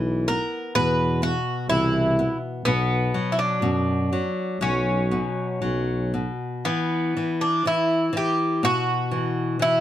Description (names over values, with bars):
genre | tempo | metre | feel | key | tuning
fado-style ballad | 58-65 BPM | 2/4 | rubato | unclear | A4 = 439 Hz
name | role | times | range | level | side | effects
Irish bouzouki | melody | 0.0-9.8 s | B3 to B4 | -24 LUFS | right 1 dB | none
nylon-string guitar | accompaniment | 0.0-9.8 s | B2 to B3 | -25 LUFS | left 2 dB | none
mellow tuba | bass | 0.0-6.3 s | B1 to F#2 | -25 LUFS | right 1 dB | none
room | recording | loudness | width
little or no reverb | dark, warm production | -21 LUFS | side -12 dB against mid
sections
0.0-6.6 A section; 6.6-9.8 A section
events
none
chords
0.0 E5; 2.6 Bmadd9; 6.6 E5